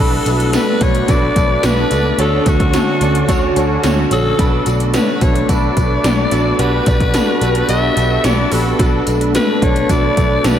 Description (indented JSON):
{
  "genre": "1980s-style pop",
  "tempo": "109 BPM",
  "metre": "4/4",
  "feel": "straight",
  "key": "B minor",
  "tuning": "A4 = 435 Hz",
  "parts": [
    { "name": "raspy alto saxophone", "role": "melody", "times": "0.0-10.6 s", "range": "F#4 to E5", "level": "-19 LUFS", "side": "left 2 dB", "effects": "diffuse ambient delay" },
    { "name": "clear concert grand piano", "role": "accompaniment", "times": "0.0-10.6 s", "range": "B2 to D5", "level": "-18 LUFS", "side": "right 1 dB", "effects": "ensemble chorus" },
    { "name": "sweeping resonant pad", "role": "sustained chords", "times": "0.0-10.6 s", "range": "D3 to A4", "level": "-22 LUFS", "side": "left 2 dB", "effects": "chorus" },
    { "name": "vintage muted picked electric bass", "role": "bass", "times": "0.0-10.6 s", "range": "A#1 to D2", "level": "-18 LUFS", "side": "equal", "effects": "none" },
    { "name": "80s electronic pad drums", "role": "drums", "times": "0.3-10.6 s", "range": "hi-hat, kick drum, snare drum", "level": "-18 LUFS", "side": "equal", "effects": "overdrive" },
    { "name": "tambourine", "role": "percussion", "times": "0.3-10.6 s", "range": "none", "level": "-35 LUFS", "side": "right 5 dB", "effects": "none" }
  ],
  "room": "wet lush hall reverb, RT60 2.6 s",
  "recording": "dreamy mix soaked in reverb",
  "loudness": "-12 LUFS",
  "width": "side -10 dB against mid",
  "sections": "0.0-10.6 A section",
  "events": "none",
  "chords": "0.0 Bm7; 2.2 Dmaj7; 4.4 Bm7; 6.6 Gmaj7/B; 8.8 Bm7"
}